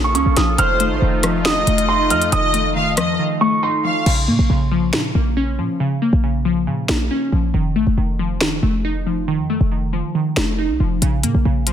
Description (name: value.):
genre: hip hop, drill.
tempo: 138 BPM.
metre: 4/4.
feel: half-time.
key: Bb harmonic minor.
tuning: A4 = 437 Hz.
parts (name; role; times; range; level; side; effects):
dark grand piano; melody; 0.0-3.8 s; C6 to F6; -21 LUFS; right 2 dB; low-pass filter, tape echo.
glassy wavetable pluck; accompaniment; 0.0-11.7 s; Db3 to Eb4; -20 LUFS; left 1 dB; chorus, low-pass filter.
warm analog pad; sustained chords; 0.0-4.0 s; A3 to A4; -27 LUFS; right 3 dB; chorus.
short 808-style bass; bass; 0.0-11.7 s; F1 to Bb2; -20 LUFS; equal; none.
drill drum kit; drums; 0.1-11.7 s; crash cymbal, finger snaps, hi-hat, rim click, snare drum; -22 LUFS; left 1 dB; soft clipping on snare.
warm symphonic violin section; second line; 0.6-4.1 s; C5 to F5; -23 LUFS; equal; tape echo.
room: light reverb, digital ambience.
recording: dense, heavily limited modern master.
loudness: -16 LUFS.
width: side -9 dB against mid.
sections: 0.0-4.1 A section; 4.1-11.7 B section.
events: silent gap 3.2-4.1; break 4.1-11.0.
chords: 0.0 Bbm; 0.6 F7; 4.1 Bbm; 7.5 F7; 11.0 Bbm.